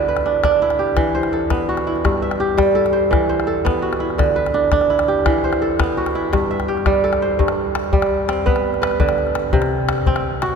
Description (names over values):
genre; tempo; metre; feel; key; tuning
west african traditional, West African string and xylophone music; 112 BPM (dotted quarters); 12/8; straight; G major; A4 = 440 Hz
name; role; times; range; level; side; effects
kora; arpeggios; 0.0-10.6 s; G2 to E5; -17 LUFS; right 2 dB; none
calabash; percussion; 0.2-10.5 s; none; -21 LUFS; left 3 dB; none
room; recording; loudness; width
wet cathedral reverb, RT60 6.2 s; recorded in a church or concert hall; -16 LUFS; side -6 dB against mid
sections
0.0-7.4 A section; 7.4-10.6 B section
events
none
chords
0.0 D; 1.0 Em; 2.0 Am7/G; 3.1 E5; 4.2 D; 5.3 Em; 6.3 Am7/G; 7.4 G; 9.5 N.C.